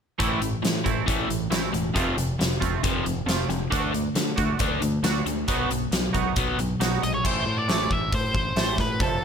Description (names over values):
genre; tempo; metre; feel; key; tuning
quiet-loud alternative rock; 136 BPM; 4/4; straight; A minor; A4 = 440 Hz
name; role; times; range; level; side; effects
twangy electric guitar; arpeggios; 0.2-9.2 s; F2 to F#4; -31 LUFS; right 8 dB; analog chorus
crunchy overdriven guitar; riff; 0.2-7.2 s; F2 to D4; -26 LUFS; left 1 dB; none
growling fingered electric bass; bass; 0.2-9.2 s; E1 to D3; -31 LUFS; equal; overdrive
huge arena drum kit; drums; 0.2-9.1 s; crash cymbal, hi-hat, kick drum, snare drum; -26 LUFS; left 1 dB; none
octave-fuzz lead guitar; melody; 7.0-9.2 s; A4 to E5; -26 LUFS; equal; distortion, slapback echo
room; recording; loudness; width
light reverb, studio reverb; none; -22 LUFS; side -7 dB against mid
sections
0.2-7.2 A section; 7.2-9.2 B section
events
none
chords
0.2 Am; 2.0 F; 3.7 D; 5.5 B; 7.2 Am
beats
| 0.19 0.63 1.07 1.51 | 1.95 2.40 2.83 3.28 | 3.72 4.16 4.60 5.04 | 5.48 5.92 6.36 6.80 | 7.24 7.68 8.12 8.56 | 9.00